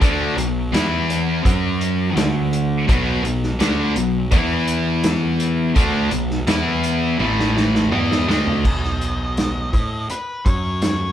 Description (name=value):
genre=classic rock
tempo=83 BPM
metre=4/4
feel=straight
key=unclear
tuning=A4 = 438 Hz
part: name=distorted electric guitar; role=riff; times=0.0-8.6 s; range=A2 to F#4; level=-19 LUFS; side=equal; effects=distortion
part: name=fuzz picked electric bass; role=bass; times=0.0-11.1 s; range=A1 to A2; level=-24 LUFS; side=equal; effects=overdrive
part: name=vintage drum kit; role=drums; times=0.0-11.0 s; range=crash cymbal, hi-hat, kick drum, snare drum, toms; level=-21 LUFS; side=equal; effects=none
part: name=octave-fuzz lead guitar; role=melody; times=7.9-11.1 s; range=B4 to D#5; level=-26 LUFS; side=equal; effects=distortion
room=moderate stone room reverb, RT60 1.0 s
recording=band playing live in one room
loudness=-17 LUFS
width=side -11 dB against mid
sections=0.0-8.6 A section; 8.6-11.1 B section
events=drum fill 7.2-8.6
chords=0.0 B5; 0.7 E5; 1.4 F#5; 2.2 D5; 2.9 B5; 4.3 E5; 5.8 B5; 6.5 E5; 7.2 A5; 7.9 B; 10.5 F#5